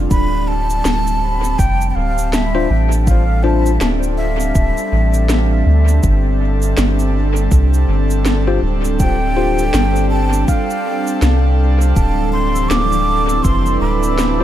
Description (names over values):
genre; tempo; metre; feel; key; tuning
ambient dub; 81 BPM; 4/4; swing 59% on 16ths; unclear; A4 = 440 Hz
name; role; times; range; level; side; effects
airy breathy pad; sustained chords; 0.0-14.4 s; G3 to A4; -21 LUFS; equal; chorus
soft dub sub bass; bass; 0.0-14.4 s; D1 to D2; -16 LUFS; equal; none
bubbling stepped-filter texture; texture; 0.0-0.1, 12.0-14.4 s; E3 to E6; -25 LUFS; right 3 dB; chorus, built-in reverb
breathy mellow silver concert flute; melody; 0.1-14.4 s; E5 to D6; -22 LUFS; right 1 dB; dub echo
electronic cabasa and snare drum; drums; 0.1-14.4 s; none; -23 LUFS; left 1 dB; dub echo
electronic kick drum; drums; 0.1-13.6 s; none; -16 LUFS; equal; none
bell-like tine electric piano; stabs; 2.5-3.7, 8.5-9.6, 14.4 s; D4 to C5; -23 LUFS; left 6 dB; dub echo
room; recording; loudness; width
digital ambience; none; -13 LUFS; side -12 dB against mid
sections
0.1-14.4 A section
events
none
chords
0.1 D7(no3)